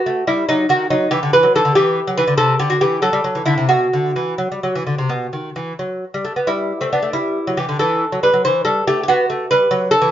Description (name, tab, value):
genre	classical, baroque-style dance for lute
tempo	86-96 BPM (dotted quarters)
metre	12/8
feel	rubato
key	E minor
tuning	A4 = 440 Hz
part	lute	solo	0.0-10.1 s	B2 to C5	-15 LUFS	equal	none
room	light reverb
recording	band playing live in one room, nothing above 7.5 kHz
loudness	-15 LUFS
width	side -11 dB against mid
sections	0.0-10.1 A section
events	none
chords	0.0 B7 (rootless); 1.1 Em; 2.4 Am/C; 3.7 Bsus4; 5.1 B5; 6.5 Em/G; 7.8 Emadd11; 9.1 B7(no3)